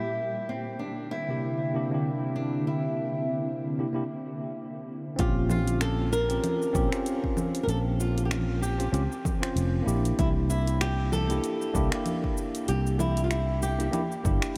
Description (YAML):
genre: sunset chillout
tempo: 96 BPM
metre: 4/4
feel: swing 56% on 16ths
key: unclear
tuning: A4 = 440 Hz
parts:
  - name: flamenco guitar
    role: melody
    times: 0.0-14.6 s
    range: C4 to Bb4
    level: -35 LUFS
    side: equal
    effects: diffuse ambient delay
  - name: shimmering ambient pad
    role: sustained chords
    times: 0.0-5.2 s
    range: Bb2 to G4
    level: -37 LUFS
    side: equal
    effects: chorus, built-in reverb, phaser
  - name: tine electric piano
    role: accompaniment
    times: 1.3-14.6 s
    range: C3 to C5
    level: -34 LUFS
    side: equal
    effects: diffuse ambient delay
  - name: sustaining fretless electric bass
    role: bass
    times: 5.2-14.4 s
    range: F1 to Db2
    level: -30 LUFS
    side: equal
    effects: none
  - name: deep house drum kit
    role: drums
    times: 5.2-14.5 s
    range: congas, finger snaps, hi-hat, shaker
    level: -37 LUFS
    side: equal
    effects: overdrive
  - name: electronic kick drum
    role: drums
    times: 5.2-14.4 s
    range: none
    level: -32 LUFS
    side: equal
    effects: overdrive
room: wet huge ambient reverb, RT60 9.0 s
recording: dreamy mix soaked in reverb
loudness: -28 LUFS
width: mono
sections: 0.0-5.2 A section; 5.2-14.6 B section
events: none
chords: 0.2 C9; 5.2 Bbm6; 10.2 C9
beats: | 0.19 0.81 1.44 2.06 | 2.69 3.31 3.94 4.56 | 5.19 5.81 6.44 7.06 | 7.69 8.31 8.94 9.56 | 10.19 10.81 11.44 12.06 | 12.69 13.31 13.94 14.56